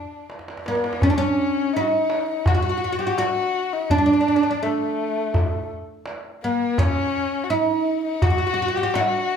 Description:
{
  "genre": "Persian modal ensemble",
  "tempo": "83 BPM",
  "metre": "4/4",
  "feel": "straight",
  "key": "D dastgah chahargah",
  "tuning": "A4 = 440 Hz",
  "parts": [
    { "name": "oud", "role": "melody", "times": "0.0-9.4 s", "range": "A3 to F#4", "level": "-22 LUFS", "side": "right 2 dB", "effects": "none" },
    { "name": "rich kamancheh", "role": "second line", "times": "0.0-9.4 s", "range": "A3 to G4", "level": "-25 LUFS", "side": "left 5 dB", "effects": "none" },
    { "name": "tombak", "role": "percussion", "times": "0.3-9.1 s", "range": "none", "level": "-24 LUFS", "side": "equal", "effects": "none" }
  ],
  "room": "wet large studio reverb, RT60 0.9 s",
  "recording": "band playing live in one room",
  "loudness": "-19 LUFS",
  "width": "side -7 dB against mid",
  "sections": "0.0-1.0 A section; 1.0-9.4 B section",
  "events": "drum fill 0.3-1.0",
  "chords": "none",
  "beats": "0.30 | 1.02 1.74 2.46 3.18 | 3.90 4.62 5.34 6.06 | 6.78 7.50 8.22 8.93"
}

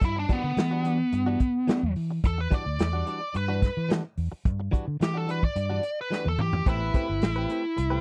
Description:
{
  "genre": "straight-eighth soul blues",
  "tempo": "108 BPM",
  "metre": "4/4",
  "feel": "straight",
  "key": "E minor",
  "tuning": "A4 = 441 Hz",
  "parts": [
    { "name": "biting lead guitar", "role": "melody", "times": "0.0-8.0 s", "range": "B3 to D5", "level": "-31 LUFS", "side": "equal", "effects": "overdrive" },
    { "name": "fingered electric bass", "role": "bass", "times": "0.0-8.0 s", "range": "G1 to E3", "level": "-31 LUFS", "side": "equal", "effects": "none" },
    { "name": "warm soul drum kit", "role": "drums", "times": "0.0-7.9 s", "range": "hi-hat, kick drum, snare drum, toms", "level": "-28 LUFS", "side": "equal", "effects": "none" },
    { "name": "direct-recorded clean electric guitar", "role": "stabs", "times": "0.2-8.0 s", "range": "E3 to B4", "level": "-36 LUFS", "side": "equal", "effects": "none" },
    { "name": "bright horn section", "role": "sustained chords", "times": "6.7-7.2 s", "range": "B3 to B4", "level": "-42 LUFS", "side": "equal", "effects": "none" }
  ],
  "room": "little or no reverb",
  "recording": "none",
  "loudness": "-27 LUFS",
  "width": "mono",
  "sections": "0.0-8.0 A section",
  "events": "lead electric guitar solo 0.0-8.0; drum fill 6.1-6.7",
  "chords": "0.0 Em9; 6.7 Am9",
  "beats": "| 0.02 0.58 1.13 1.68 | 2.24 2.79 3.35 3.90 | 4.45 5.01 5.56 6.12 | 6.67 7.22 7.78"
}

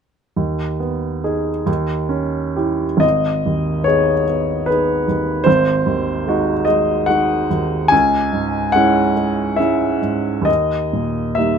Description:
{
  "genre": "classical, romantic nocturne for solo piano",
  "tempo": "62-78 BPM",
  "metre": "3/4",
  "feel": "rubato",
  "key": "G# minor",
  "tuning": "A4 = 440 Hz",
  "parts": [
    { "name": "clear upright piano", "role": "solo", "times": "0.4-11.6 s", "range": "G#1 to G#5", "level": "-15 LUFS", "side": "equal", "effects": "none" }
  ],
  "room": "light reverb",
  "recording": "close, detailed microphones",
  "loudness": "-15 LUFS",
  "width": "side -7 dB against mid",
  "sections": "0.4-3.0 A section; 3.0-11.6 B section",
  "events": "none",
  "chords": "0.4 G#m/D#; 1.7 D#7b9; 3.0 G#m; 5.5 G#7; 7.9 C#m; 10.5 D#",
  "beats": "| 0.37 1.25 2.11 | 3.03 3.88 4.69 | 5.47 6.28 7.09 | 7.92 8.75 9.59 | 10.48 11.39"
}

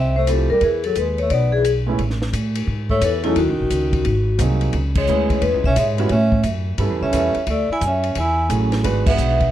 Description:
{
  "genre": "jazz, small-group swing and bop",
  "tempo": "175 BPM",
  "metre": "4/4",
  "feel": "swing 65% on 8ths",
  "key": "A major",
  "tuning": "A4 = 440 Hz",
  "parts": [
    { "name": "vibraphone with medium hard mallets", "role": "melody", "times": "0.0-9.5 s", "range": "E4 to G#5", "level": "-20 LUFS", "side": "left 2 dB", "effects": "plate reverb" },
    { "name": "warm tenor saxophone", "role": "second line", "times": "0.0-9.5 s", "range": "C#3 to E4", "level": "-26 LUFS", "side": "right 3 dB", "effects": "none" },
    { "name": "upright bass", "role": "bass", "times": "0.0-9.5 s", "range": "G#1 to A2", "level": "-20 LUFS", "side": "equal", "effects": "none" },
    { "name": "warm concert grand piano", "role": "accompaniment", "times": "0.3-9.4 s", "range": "A2 to B4", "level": "-24 LUFS", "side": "right 6 dB", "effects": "none" },
    { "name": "compact cocktail drum kit", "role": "drums", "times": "0.3-9.5 s", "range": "crash cymbal, hi-hat, kick drum, ride cymbal, snare drum", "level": "-26 LUFS", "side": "left 1 dB", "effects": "none" }
  ],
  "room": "light reverb",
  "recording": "dark, warm production",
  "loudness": "-16 LUFS",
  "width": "side -12 dB against mid",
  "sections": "0.0-2.0 A section; 2.0-9.5 B section",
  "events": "band accent 4.9, 9.0",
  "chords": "0.0 Fmaj7; 0.6 E; 2.0 Amaj7(no3); 3.4 D#m7b5; 4.1 G#7; 4.7 C#m7; 6.1 A7; 7.5 Dmaj9#11; 8.8 G#m7b5",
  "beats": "0.28 | 0.63 0.97 1.31 1.66 | 2.00 2.34 2.69 3.03 | 3.37 3.71 4.05 4.40 | 4.74 5.08 5.42 5.77 | 6.11 6.45 6.79 7.13 | 7.48 7.82 8.16 8.50 | 8.84 9.19"
}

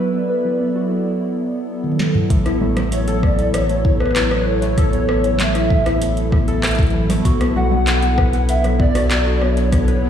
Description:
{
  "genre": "IDM",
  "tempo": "97 BPM",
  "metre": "4/4",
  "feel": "straight",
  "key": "A major",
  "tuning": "A4 = 440 Hz",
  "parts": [
    { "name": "hollow soft pad", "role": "sustained chords", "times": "0.0-10.1 s", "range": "F#3 to D5", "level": "-22 LUFS", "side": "right 2 dB", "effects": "chorus" },
    { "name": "warbly dusty pluck", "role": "arpeggios", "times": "0.0-10.1 s", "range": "E3 to B4", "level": "-23 LUFS", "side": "left 1 dB", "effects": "lush chorus, ping-pong delay" },
    { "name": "bubbling stepped-filter texture", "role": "texture", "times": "0.0-1.1 s", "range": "E4 to E5", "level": "-40 LUFS", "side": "right 1 dB", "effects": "chorus, built-in reverb" },
    { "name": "booming analog drum machine", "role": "drums", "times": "1.8-10.0 s", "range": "congas, handclaps, hi-hat, rim click, snare drum, toms", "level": "-23 LUFS", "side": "equal", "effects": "overdrive" },
    { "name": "warm sub bass", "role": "bass", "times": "2.3-10.1 s", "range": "A1 to B1", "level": "-20 LUFS", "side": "equal", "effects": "none" },
    { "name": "electronic kick drum", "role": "drums", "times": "2.3-9.8 s", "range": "none", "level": "-17 LUFS", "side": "equal", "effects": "none" },
    { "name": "warbly nostalgic lead", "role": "melody", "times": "2.9-10.1 s", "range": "B4 to F#5", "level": "-22 LUFS", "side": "equal", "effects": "ensemble chorus, digital delay" }
  ],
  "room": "moderate lush hall reverb, RT60 1.9 s",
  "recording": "played on a big sound system in a bare room, large studio reverb",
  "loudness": "-15 LUFS",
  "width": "side -9 dB against mid",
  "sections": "0.0-2.3 A section; 2.3-10.1 B section",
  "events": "filter sweep on analog synth pad 0.0-2.3; drum fill 1.8-2.3",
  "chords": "0.0 Bm; 2.3 A; 7.3 Bm",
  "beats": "0.45 1.06 1.68 | 2.30 2.92 3.54 4.16 | 4.78 5.39 6.01 6.63 | 7.25 7.87 8.49 9.11 | 9.72"
}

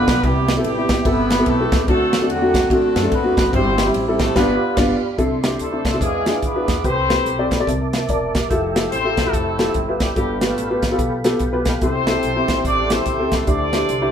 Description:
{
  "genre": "uptempo gospel",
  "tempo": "145 BPM",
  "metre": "4/4",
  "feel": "swing 61% on 8ths",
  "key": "C major",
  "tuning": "A4 = 439 Hz",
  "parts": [
    { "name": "clear horn section", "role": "melody", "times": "0.0-14.1 s", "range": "F#3 to D5", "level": "-22 LUFS", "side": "left 1 dB", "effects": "none" },
    { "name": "warm upright piano", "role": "accompaniment", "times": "0.0-14.1 s", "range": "G2 to E5", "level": "-20 LUFS", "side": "left 1 dB", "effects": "none" },
    { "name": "percussive tonewheel organ", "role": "sustained chords", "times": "0.0-14.1 s", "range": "B3 to E6", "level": "-26 LUFS", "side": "right 3 dB", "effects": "chorus vibrato, slow rotary speaker" },
    { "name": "upright bass", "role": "bass", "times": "0.0-14.1 s", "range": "E1 to F#2", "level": "-27 LUFS", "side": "equal", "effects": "none" },
    { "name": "tight funk drum kit", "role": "drums", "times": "0.1-14.0 s", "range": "crash cymbal, hi-hat, kick drum, ride cymbal, snare drum", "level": "-22 LUFS", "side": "equal", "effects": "none" }
  ],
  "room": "moderate studio reverb, RT60 0.8 s",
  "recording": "band playing live in one room",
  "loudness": "-16 LUFS",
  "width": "side -8 dB against mid",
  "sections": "0.0-5.2 A section; 5.2-14.1 B section",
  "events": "band accent 4.4-5.2",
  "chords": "0.2 Cmaj7; 1.9 D7; 3.5 C/G; 4.4 G7; 5.2 C69; 6.0 E7b9; 6.8 Am9/C; 7.7 C13; 8.5 Fmaj9; 10.2 G9; 11.8 C6; 13.5 D9sus4",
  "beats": "| 0.23 0.64 1.05 1.47 | 1.88 2.29 2.70 3.12 | 3.53 3.94 4.36 4.77 | 5.18 5.60 6.01 6.43 | 6.84 7.26 7.67 8.09 | 8.50 8.92 9.33 9.75 | 10.16 10.58 10.99 11.41 | 11.82 12.23 12.65 13.06 | 13.48 13.89"
}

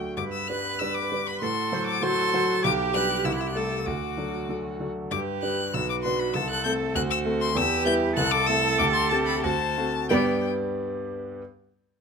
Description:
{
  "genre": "quick classical-period movement for piano quartet",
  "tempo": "97 BPM",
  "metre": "2/4",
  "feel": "straight",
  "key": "G major",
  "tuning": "A4 = 441 Hz",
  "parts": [
    { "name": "rich violin", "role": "second line", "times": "0.0-10.5 s", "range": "B3 to G5", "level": "-35 LUFS", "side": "left 4 dB", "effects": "none" },
    { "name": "warm concert grand piano", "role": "accompaniment", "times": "0.0-11.4 s", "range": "B1 to D5", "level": "-27 LUFS", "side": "equal", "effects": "none" },
    { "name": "rich violin", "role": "melody", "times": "0.2-10.5 s", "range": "G5 to G6", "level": "-28 LUFS", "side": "left 7 dB", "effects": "none" },
    { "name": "warm cello", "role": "second line", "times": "0.2-10.5 s", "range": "B3 to B4", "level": "-29 LUFS", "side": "right 6 dB", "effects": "none" }
  ],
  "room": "light reverb",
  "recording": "minimal, uncompressed stereo recording",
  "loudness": "-23 LUFS",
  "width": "side -6 dB against mid",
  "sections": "0.2-10.1 A section; 10.1-11.4 B section",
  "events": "none",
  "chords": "0.2 G; 1.4 F#dim/A; 2.6 G/B; 3.2 Am7/C; 3.9 D; 5.1 G; 5.7 Bm; 6.3 Am/C; 7.0 D7; 7.6 Em; 8.2 Am/C; 8.8 D7sus4; 9.4 D7; 10.1 G",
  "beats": "| 0.18 0.81 | 1.42 2.04 | 2.64 3.25 | 3.86 4.49 | 5.11 5.74 | 6.35 6.96 | 7.56 8.17 | 8.80 9.44 | 10.10 10.74"
}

